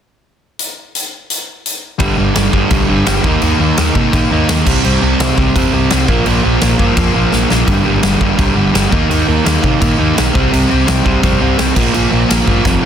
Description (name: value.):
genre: punk rock.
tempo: 169 BPM.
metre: 4/4.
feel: straight.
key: G minor.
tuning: A4 = 440 Hz.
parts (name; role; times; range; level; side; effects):
big rock drum kit; drums; 0.6-12.7 s; crash cymbal, hi-hat, kick drum, snare drum; -16 LUFS; equal; soft clipping on snare.
crunchy overdriven guitar; riff; 2.0-12.8 s; F2 to Eb4; -15 LUFS; right 9 dB; none.
sludgy distorted guitar; riff; 2.0-12.9 s; F2 to Eb4; -17 LUFS; left 10 dB; overdrive.
picked electric bass; bass; 2.0-12.9 s; F1 to C3; -18 LUFS; equal; none.
room: little or no reverb.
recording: dense, heavily limited modern master.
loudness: -11 LUFS.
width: side -9 dB against mid.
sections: 0.6-2.0 A section; 2.0-12.9 B section.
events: drum fill 7.3-7.7, 12.7.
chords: 0.6 N.C.; 2.0 G5; 3.2 Eb5; 4.7 C5; 6.1 Bb5; 7.7 G5; 8.9 Eb5; 10.3 C5; 11.8 Bb5.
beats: | 0.59 0.94 1.30 1.65 | 2.00 2.36 2.71 3.07 | 3.42 3.77 4.13 4.49 | 4.84 5.20 5.55 5.91 | 6.26 6.62 6.97 7.33 | 7.68 8.04 8.39 8.75 | 9.10 9.46 9.81 10.17 | 10.52 10.88 11.23 11.59 | 11.94 12.30 12.65.